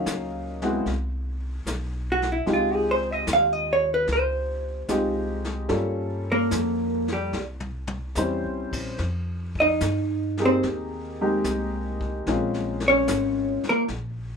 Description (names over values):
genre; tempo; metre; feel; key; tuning
jazz ballad; 74 BPM; 4/4; swing 69% on 8ths; unclear; A4 = 438 Hz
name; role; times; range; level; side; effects
vintage hollow-body jazz guitar; melody; 0.0-13.8 s; G3 to F5; -22 LUFS; right 1 dB; none
warm upright piano; accompaniment; 0.0-13.9 s; Gb3 to F5; -28 LUFS; left 1 dB; none
upright bass; bass; 0.0-14.4 s; Ab1 to G2; -31 LUFS; equal; none
vintage brush drum kit; drums; 0.1-14.4 s; brushed snare drum, crash cymbal, hi-hat, kick drum, snare drum, toms; -34 LUFS; left 2 dB; none
room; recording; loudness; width
moderate club reverb, RT60 0.5 s; minimal, uncompressed stereo recording; -23 LUFS; side -6 dB against mid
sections
0.0-14.4 A section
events
hollow-body jazz guitar solo 0.0-14.4; drum fill 7.3-8.2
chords
0.0 Ebm9; 0.9 Cmaj7(no3); 2.5 Dbmaj9#11; 5.7 Gm7b5; 7.3 C7b9; 9.0 Fm11; 12.3 Bbm9